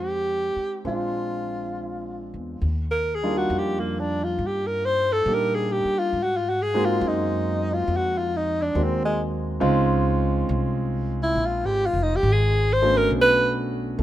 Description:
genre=jazz ballad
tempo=68 BPM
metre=4/4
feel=swing 68% on 8ths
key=Eb major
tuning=A4 = 440 Hz
part: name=clear alto saxophone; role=melody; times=0.0-13.5 s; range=Ab3 to C5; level=-23 LUFS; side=equal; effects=none
part: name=warm concert grand piano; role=accompaniment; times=0.0-14.0 s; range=G3 to G5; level=-27 LUFS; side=right 1 dB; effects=none
part: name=upright bass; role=bass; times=0.0-14.0 s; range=F1 to Bb2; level=-27 LUFS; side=equal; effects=none
room=light reverb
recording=minimal, uncompressed stereo recording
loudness=-21 LUFS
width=side -13 dB against mid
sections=0.0-2.6 A section; 2.6-14.0 B section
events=alto saxophone solo 2.6-14.0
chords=0.0 Fm7; 0.8 Bb7; 2.6 Ebmaj7; 6.1 Ab7; 9.6 Dbmaj9; 13.1 Bm7

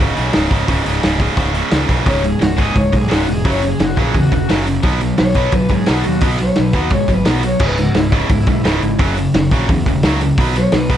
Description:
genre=punk rock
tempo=173 BPM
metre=4/4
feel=straight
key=C# minor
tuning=A4 = 439 Hz
part: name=tight distorted guitar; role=riff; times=0.0-11.0 s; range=C#2 to B3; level=-20 LUFS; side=left 9 dB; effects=distortion
part: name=tight distorted guitar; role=riff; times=0.0-11.0 s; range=C#2 to B3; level=-20 LUFS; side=right 10 dB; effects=distortion
part: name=fuzz picked electric bass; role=bass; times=0.0-11.0 s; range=C#1 to G#2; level=-20 LUFS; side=equal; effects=overdrive
part: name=loose indie drum kit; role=drums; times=0.2-11.0 s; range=crash cymbal, hi-hat, kick drum, snare drum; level=-17 LUFS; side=equal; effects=none
part: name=raw garage guitar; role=melody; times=2.1-11.0 s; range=E4 to C#5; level=-22 LUFS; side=left 1 dB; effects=overdrive
room=little or no reverb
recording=none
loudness=-13 LUFS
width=side -10 dB against mid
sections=0.0-2.1 A section; 2.1-11.0 B section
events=overdriven electric guitar solo 2.1-11.0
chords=0.0 C#5; 3.4 F#5; 4.8 B5; 7.6 C#m; 9.0 F#5; 10.4 B5

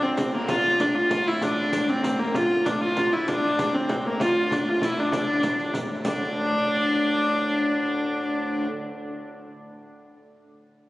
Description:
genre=medieval dance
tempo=130 BPM (dotted quarters)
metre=6/8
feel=straight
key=D minor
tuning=A4 = 440 Hz
part: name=rich hurdy-gurdy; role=melody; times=0.0-8.7 s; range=Bb3 to F4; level=-24 LUFS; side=equal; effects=none
part: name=bright reedy tenor recorder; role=second line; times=0.0-8.6 s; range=C4 to Bb4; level=-30 LUFS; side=left 2 dB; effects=none
part: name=pedal harmonium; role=drone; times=0.0-8.7 s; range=D2 to A2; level=-32 LUFS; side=equal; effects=none
part: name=frame drum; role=percussion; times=0.2-6.2 s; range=none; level=-32 LUFS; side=right 1 dB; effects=none
part: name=riq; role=percussion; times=0.2-6.2 s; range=none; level=-36 LUFS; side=right 1 dB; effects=none
room=wet cathedral reverb, RT60 4.2 s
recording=recorded on a phone in the room, studio ambience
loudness=-21 LUFS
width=side -18 dB against mid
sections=0.0-6.1 A section; 6.1-7.9 B section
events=none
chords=none

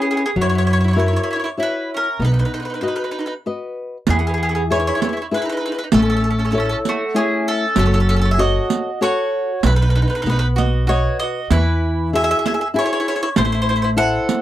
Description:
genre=italian folk, Italian serenade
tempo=97 BPM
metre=3/4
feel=rubato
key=B major, E major from 4.1 s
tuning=A4 = 439 Hz
part: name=mandolin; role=melody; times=0.0-14.4 s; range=F#4 to F#5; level=-22 LUFS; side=right 1 dB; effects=none
part: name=mandolin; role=second line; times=0.0-14.4 s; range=A3 to A4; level=-27 LUFS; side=right 4 dB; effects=none
part: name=flamenco guitar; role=accompaniment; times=0.0-14.4 s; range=E3 to D#5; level=-21 LUFS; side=left 3 dB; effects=none
part: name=upright bass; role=bass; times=0.4-14.2 s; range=F#1 to F#2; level=-18 LUFS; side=equal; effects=none
part: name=riq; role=percussion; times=4.1-14.4 s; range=none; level=-20 LUFS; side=right 7 dB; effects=none
room=little or no reverb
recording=dry, close 1970s-style studio recording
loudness=-16 LUFS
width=side -13 dB against mid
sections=0.0-4.1 A section; 4.1-14.4 B section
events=none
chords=0.4 F#7; 2.2 B; 4.1 E; 5.9 A; 7.8 F#m; 9.6 B; 11.5 Eadd9; 13.4 Am

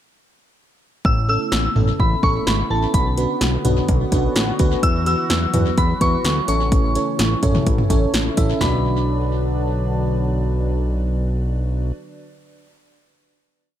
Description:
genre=synth-pop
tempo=127 BPM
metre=4/4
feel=straight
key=B minor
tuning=A4 = 443 Hz
part: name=fat analog bass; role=bass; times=1.0-11.9 s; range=G#1 to E2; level=-21 LUFS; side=equal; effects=none
part: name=deep house drum kit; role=drums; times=1.0-8.7 s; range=hi-hat, kick drum, snare drum, toms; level=-20 LUFS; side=equal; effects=overdrive
part: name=soft synth bell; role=melody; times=1.1-11.9 s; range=A5 to E6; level=-24 LUFS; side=equal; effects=chorus, tape echo
part: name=sweeping resonant pad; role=sustained chords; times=1.1-11.9 s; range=C#3 to F#4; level=-28 LUFS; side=left 1 dB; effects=chorus
part: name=FM electric piano with soft pad layer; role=accompaniment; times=1.3-11.9 s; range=A3 to E5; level=-25 LUFS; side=right 1 dB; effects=chorus, tape echo
room=light reverb, digital ambience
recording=echo-heavy mix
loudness=-17 LUFS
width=side -11 dB against mid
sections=1.1-8.6 pre-chorus; 8.6-12.4 final chord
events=none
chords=1.1 Aadd9; 2.9 Bmadd9; 4.8 Esus2; 6.5 A; 8.6 Bm

